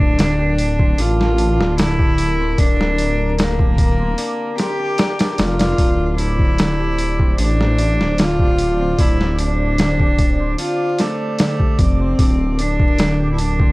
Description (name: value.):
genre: trip hop.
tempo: 75 BPM.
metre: 4/4.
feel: straight.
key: D minor.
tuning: A4 = 442 Hz.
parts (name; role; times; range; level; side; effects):
rich cello; melody; 0.0-13.7 s; A3 to G4; -20 LUFS; equal; vintage 12-bit sampler grit, dub echo.
warbly tape-like pad; sustained chords; 0.0-13.7 s; Bb4 to D6; -28 LUFS; equal; chorus, built-in reverb.
concert harp; arpeggios; 0.0-13.7 s; D3 to D5; -26 LUFS; equal; none.
dark detuned saw bass; bass; 0.0-13.7 s; D1 to A1; -19 LUFS; equal; tube saturation.
boom bap sampler-style drum kit; drums; 0.0-13.7 s; hi-hat, kick drum, snare drum; -17 LUFS; equal; none.
room: digital ambience.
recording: dry, gritty hardware recording, vinyl crackle.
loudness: -14 LUFS.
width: side -21 dB against mid.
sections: 0.0-13.7 A section.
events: none.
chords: 0.0 Bbmaj7/D; 5.8 Dm7; 12.2 Bbmaj7/D.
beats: 0.18 0.98 1.78 | 2.58 3.38 4.18 4.99 | 5.79 6.58 7.38 8.19 | 8.98 9.79 10.59 11.38 | 12.19 12.98.